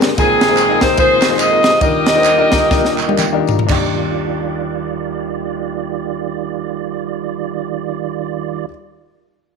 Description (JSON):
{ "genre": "uptempo gospel", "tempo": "114-152 BPM", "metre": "4/4", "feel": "swing 60% on 8ths", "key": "Eb major", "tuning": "A4 = 440 Hz", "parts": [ { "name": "warm concert grand piano", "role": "accompaniment", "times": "0.0-8.7 s", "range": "Ab1 to Bb5", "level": "-21 LUFS", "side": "left 12 dB", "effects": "none" }, { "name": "tonewheel organ", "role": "sustained chords", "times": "0.0-8.7 s", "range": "D3 to D5", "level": "-22 LUFS", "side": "right 13 dB", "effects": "slow rotary speaker, chorus vibrato" }, { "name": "crisp fusion drum kit", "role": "drums", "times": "0.0-3.8 s", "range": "crash cymbal, kick drum, ride cymbal, snare drum, toms", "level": "-18 LUFS", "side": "right 1 dB", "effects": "none" }, { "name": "tambourine and handclaps", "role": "percussion", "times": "0.0-4.0 s", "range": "none", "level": "-25 LUFS", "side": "right 6 dB", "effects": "none" }, { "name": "clear saxophone section", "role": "melody", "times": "0.2-3.2 s", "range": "C4 to Eb5", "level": "-13 LUFS", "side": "equal", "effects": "none" } ], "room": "moderate plate reverb, RT60 1.5 s, studio reverb", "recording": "1960s-style stereo with parts hard left and right", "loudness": "-14 LUFS", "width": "side -5 dB against mid", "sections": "0.0-3.7 A section; 3.7-7.9 B section", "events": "slowing down 0.2-3.7; drum fill 2.7-3.7; grand piano fill 2.9-3.7", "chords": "0.2 Bb9sus4; 1.8 Ebmaj9", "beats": "| 0.18 0.58 0.98 1.39 | 1.81 2.25 2.71 3.19 | 3.70 4.22 4.75 5.27 | 5.80 6.32 6.85 7.37" }